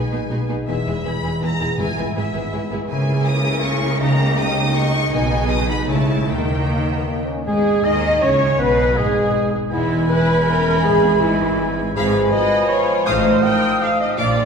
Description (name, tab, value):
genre	classical, dramatic, fast romantic movement for symphony orchestra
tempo	161 BPM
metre	3/4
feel	straight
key	G# minor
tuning	A4 = 436 Hz
part	rich symphonic violin section	melody	0.0-14.5 s	G#3 to D#6	-28 LUFS	left 2 dB	none
part	mellow French horn section	sustained chords	0.0-14.5 s	F3 to G#4	-28 LUFS	left 2 dB	none
part	concert harp	arpeggios	0.0-14.5 s	E2 to D#5	-25 LUFS	left 1 dB	none
part	warm symphonic violin section	second line	0.1-14.4 s	D#4 to Eb6	-28 LUFS	left 2 dB	none
part	rich symphonic viola section	accompaniment	0.1-14.5 s	G#3 to G5	-25 LUFS	right 2 dB	none
part	rich symphonic cello section	bass	0.1-14.5 s	E2 to D#3	-25 LUFS	right 2 dB	none
part	rich symphonic double bass section	bass	0.1-14.5 s	E1 to D#2	-25 LUFS	right 2 dB	none
part	timpani	percussion	1.8-2.3, 14.2-14.5 s	G#2 to Bb2	-33 LUFS	equal	none
part	clear oboe	second line	7.5-14.5 s	G#4 to Ab5	-26 LUFS	right 2 dB	none
part	dark clarinet	second line	7.5-14.5 s	E4 to G5	-22 LUFS	right 1 dB	none
part	silver concert flute	second line	7.5-14.5 s	G#4 to Eb6	-25 LUFS	left 3 dB	none
part	mellow bassoon	accompaniment	7.5-14.5 s	E3 to D#4	-24 LUFS	right 1 dB	none
room	wet scoring stage reverb, RT60 1.8 s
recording	heard from further back in the room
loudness	-16 LUFS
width	side -6 dB against mid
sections	0.0-7.5 A section; 7.5-14.5 A section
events	timpani fill 14.2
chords	0.0 G#m/B; 0.7 E; 1.8 E/G#; 2.9 A#m7b5/C#; 4.0 D#7/C#; 5.1 G#m/B; 5.9 A/C#; 6.3 D#; 7.5 G#m; 9.7 E; 10.8 E/G#; 12.0 Fdim/Ab; 13.1 F7/A